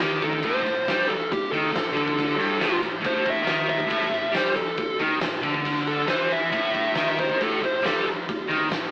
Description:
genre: garage rock duo or trio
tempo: 138 BPM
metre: 4/4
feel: straight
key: unclear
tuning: A4 = 440 Hz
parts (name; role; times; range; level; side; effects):
- fuzz lead guitar; melody; 0.0-8.1 s; G4 to E5; -25 LUFS; equal; distortion
- thick fuzz guitar; riff; 0.0-8.9 s; G2 to G3; -24 LUFS; equal; distortion
- oversized low-tuned drum kit; drums; 0.0-8.8 s; kick drum, ride cymbal, snare drum; -27 LUFS; equal; none
- tambourine; percussion; 0.9-8.8 s; none; -49 LUFS; right 1 dB; none
room: moderate studio reverb, RT60 0.6 s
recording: rough rehearsal-room recording, AM radio sound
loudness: -21 LUFS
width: side -23 dB against mid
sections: 0.0-8.9 A section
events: lead electric guitar solo 0.0-8.9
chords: 0.0 A5

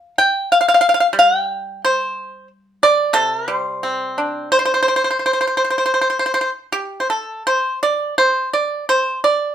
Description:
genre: chinese traditional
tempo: 79-91 BPM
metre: 4/4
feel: rubato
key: C zhi mode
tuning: A4 = 440 Hz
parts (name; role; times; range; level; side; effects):
- pipa; solo; 0.0-9.5 s; C3 to G5; -15 LUFS; equal; none
room: moderate studio reverb, RT60 0.6 s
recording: band playing live in one room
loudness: -15 LUFS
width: side -10 dB against mid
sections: 0.0-7.4 A section; 7.4-9.5 B section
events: none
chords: none

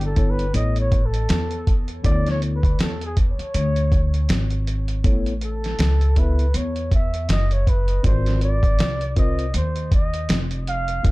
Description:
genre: hip hop, jazz-hop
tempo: 80 BPM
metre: 4/4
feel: swing 58% on 16ths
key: unclear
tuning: A4 = 439 Hz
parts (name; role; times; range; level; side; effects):
- trumpet with bucket mute; melody; 0.0-11.1 s; Ab4 to F5; -28 LUFS; equal; tape echo
- mellow tine electric piano; accompaniment; 0.0-11.1 s; B3 to E5; -29 LUFS; left 2 dB; medium stereo tremolo
- upright bass; bass; 0.0-11.1 s; F1 to E2; -22 LUFS; equal; none
- dusty soul sampler-style drum kit; drums; 0.0-11.1 s; hi-hat, kick drum, snare drum; -20 LUFS; equal; none
room: little or no reverb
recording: dark, warm production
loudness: -18 LUFS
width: side -21 dB against mid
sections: 0.0-11.1 A section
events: muted trumpet solo 0.0-11.1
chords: 0.0 Em7; 0.5 A; 2.0 D5; 5.0 A; 8.0 Ab

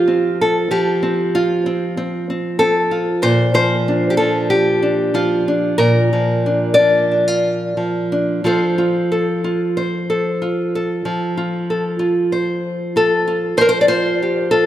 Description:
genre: folk, solo fingerstyle acoustic guitar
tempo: 94 BPM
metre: 4/4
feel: rubato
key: unclear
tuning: A4 = 439 Hz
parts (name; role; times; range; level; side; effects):
- nylon-string guitar; solo; 0.0-14.7 s; Bb2 to D5; -15 LUFS; equal; none
room: wet concert hall reverb, RT60 2.4 s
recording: none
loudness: -15 LUFS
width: side -12 dB against mid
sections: 0.0-14.7 A section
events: none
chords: 0.0 Fadd9; 3.2 Bb; 8.4 F

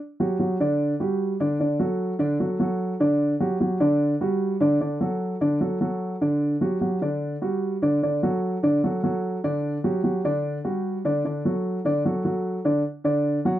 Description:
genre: latin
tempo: 149 BPM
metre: 4/4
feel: straight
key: unclear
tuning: A4 = 440 Hz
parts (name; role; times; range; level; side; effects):
- dark grand piano; solo; 0.2-13.6 s; D3 to F#5; -22 LUFS; equal; none
room: little or no reverb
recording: dry, close 1970s-style studio recording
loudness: -22 LUFS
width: side -13 dB against mid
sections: 0.0-12.8 A section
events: none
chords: 0.0 G5; 1.6 D; 3.2 G5; 4.8 D; 6.4 G5; 8.0 D; 9.6 G5; 11.2 D; 12.8 N.C.

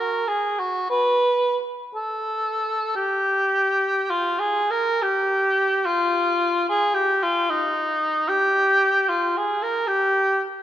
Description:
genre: classical, free, expressive piece for unaccompanied cor anglais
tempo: 45-76 BPM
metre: 3/4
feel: rubato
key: unclear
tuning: A4 = 436 Hz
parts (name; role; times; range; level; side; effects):
- warm cor anglais; solo; 0.0-10.4 s; Eb4 to Cb5; -19 LUFS; equal; none
room: wet concert hall reverb, RT60 2.0 s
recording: none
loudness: -19 LUFS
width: side -12 dB against mid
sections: 0.0-4.1 A section; 4.1-10.6 B section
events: none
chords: none

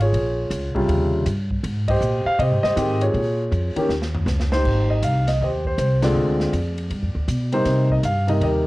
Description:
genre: jazz piano trio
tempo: 160 BPM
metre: 4/4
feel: swing 65% on 8ths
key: Ab major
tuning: A4 = 440 Hz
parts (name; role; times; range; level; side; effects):
- warm concert grand piano; melody; 0.0-8.7 s; C3 to F5; -21 LUFS; equal; cassette tape
- upright bass; bass; 0.0-8.7 s; G#1 to C3; -22 LUFS; equal; none
- swinging big-band drum kit; drums; 0.0-8.5 s; crash cymbal, hi-hat, kick drum, ride cymbal, snare drum, toms; -31 LUFS; equal; cassette tape
room: little or no reverb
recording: home recording on cassette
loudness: -18 LUFS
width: side -19 dB against mid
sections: 0.0-4.6 A section; 4.6-8.7 B section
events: band accent 1.8, 6.0; drum fill 3.9-4.6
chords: 0.1 Bbm7; 0.9 Eb13; 1.6 Abmaj7; 3.1 Bbm7; 3.9 Eb7(no3); 4.6 Abmaj7; 6.2 Dm7b5; 6.9 G7; 7.7 Cm7

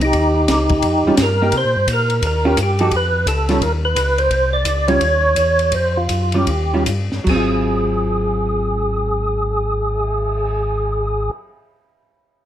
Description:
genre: soul jazz organ trio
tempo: 147-173 BPM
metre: 4/4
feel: swing 63% on 8ths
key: Ab mixolydian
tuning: A4 = 440 Hz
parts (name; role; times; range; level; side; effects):
- percussive tonewheel organ; melody; 0.0-11.3 s; Eb4 to D5; -18 LUFS; right 1 dB; slow rotary speaker, chorus vibrato
- mellow tonewheel organ; bass; 0.0-11.3 s; Ab1 to C3; -20 LUFS; left 1 dB; slow rotary speaker
- compact cocktail drum kit; drums; 0.0-10.4 s; crash cymbal, cymbal swell, hi-hat, kick drum, ride cymbal, snare drum; -24 LUFS; left 1 dB; none
- vintage hollow-body jazz guitar; accompaniment; 1.1-11.6 s; Eb3 to A4; -21 LUFS; right 1 dB; none
room: moderate large studio reverb, RT60 0.9 s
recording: none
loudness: -15 LUFS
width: side -11 dB against mid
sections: 0.0-1.5 A section; 1.5-7.3 B section; 7.3-10.5 C section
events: slowing down 4.3-7.3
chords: 0.1 Eb9; 1.5 C5; 2.2 Eb9; 2.9 F7; 3.6 Bmaj9; 4.3 Cm; 5.0 Dbmadd9/Eb; 5.7 Ebm13/F; 6.5 Eb9; 7.3 Ab6

